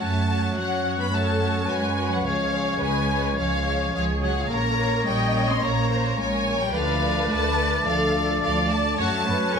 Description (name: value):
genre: cinematic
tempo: 107 BPM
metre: 4/4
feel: straight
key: F# harmonic minor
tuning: A4 = 440 Hz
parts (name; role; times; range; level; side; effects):
- warm symphonic violin section; melody; 0.0-9.6 s; E#5 to C#6; -28 LUFS; left 3 dB; none
- concert flute; second line; 0.0-9.6 s; F#6 to A#6; -32 LUFS; left 3 dB; none
- warm oboe; second line; 0.0-9.6 s; C#5 to D5; -32 LUFS; right 1 dB; none
- warm symphonic violin section; second line; 0.0-9.6 s; A3 to D5; -31 LUFS; left 1 dB; none
- dark French horn section; sustained chords; 0.0-9.6 s; F#3 to D4; -31 LUFS; left 5 dB; none
- warm studio cello section; bass; 0.0-9.6 s; E#3 to C#4; -30 LUFS; right 3 dB; none
- warm symphonic double bass section; bass; 0.0-9.6 s; A#1 to F#2; -27 LUFS; right 2 dB; none
- warm symphonic viola section; accompaniment; 1.1-9.6 s; G#4 to D#5; -29 LUFS; equal; none
room: moderate recital hall reverb, RT60 1.7 s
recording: none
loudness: -21 LUFS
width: side -6 dB against mid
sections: 0.0-9.6 A section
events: none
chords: 0.0 F#m; 2.3 C#; 4.5 A#m; 6.8 Dm; 9.0 F#m